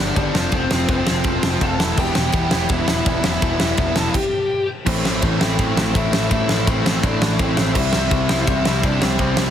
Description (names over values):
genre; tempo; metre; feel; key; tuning
punk rock; 166 BPM; 4/4; straight; A minor; A4 = 440 Hz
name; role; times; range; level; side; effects
bluesy overdriven lead guitar; melody; 0.0-9.5 s; C4 to A5; -24 LUFS; left 2 dB; distortion
crunchy overdriven guitar; riff; 0.0-9.5 s; G2 to F4; -25 LUFS; right 12 dB; none
overdriven electric guitar; riff; 0.0-9.5 s; E2 to C4; -25 LUFS; left 10 dB; none
growling picked electric bass; bass; 0.0-9.5 s; E1 to C2; -24 LUFS; equal; overdrive
big rock drum kit; drums; 0.2-9.5 s; crash cymbal, kick drum, ride cymbal, snare drum; -21 LUFS; equal; none
fuzz guitar; riff; 2.0-9.5 s; E2 to C4; -29 LUFS; equal; none
room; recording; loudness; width
little or no reverb; heavily compressed radio sound, multiband compression; -16 LUFS; side -9 dB against mid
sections
0.0-4.9 A section; 4.9-9.5 B section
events
stop 4.1-4.9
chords
0.3 F; 1.8 Em; 4.9 Am; 7.8 C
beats
0.16 | 0.53 0.89 1.25 1.61 | 1.98 2.34 2.70 3.06 | 3.42 3.79 4.15 4.51 | 4.87 5.23 5.59 5.95 | 6.31 6.67 7.04 7.39 | 7.75 8.12 8.47 8.83 | 9.19